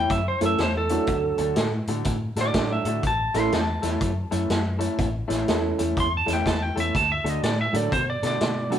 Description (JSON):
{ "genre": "electric blues shuffle", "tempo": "123 BPM", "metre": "4/4", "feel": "swing 63% on 8ths", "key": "A major", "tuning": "A4 = 441 Hz", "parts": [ { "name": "lightly driven lead guitar", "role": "melody", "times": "0.0-8.7 s", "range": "A4 to C6", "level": "-26 LUFS", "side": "right 1 dB", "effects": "none" }, { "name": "electric guitar through a small old amp", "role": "riff", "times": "0.0-8.8 s", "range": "A2 to A4", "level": "-29 LUFS", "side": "left 1 dB", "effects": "none" }, { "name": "vintage muted fingered electric bass", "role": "bass", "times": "0.0-8.8 s", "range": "A1 to B2", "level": "-28 LUFS", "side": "left 1 dB", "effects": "none" }, { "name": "vintage drum kit", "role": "drums", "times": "0.1-8.8 s", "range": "hi-hat, kick drum, snare drum", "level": "-28 LUFS", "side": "equal", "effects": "none" }, { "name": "dark grand piano", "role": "accompaniment", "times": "0.4-8.8 s", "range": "E3 to G#5", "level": "-28 LUFS", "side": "right 5 dB", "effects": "none" } ], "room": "light reverb", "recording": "band playing live in one room", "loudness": "-21 LUFS", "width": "side -9 dB against mid", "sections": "0.0-8.8 A section", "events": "lead electric guitar solo 0.0-8.8", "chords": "0.0 A; 1.1 D; 3.0 A; 6.9 D" }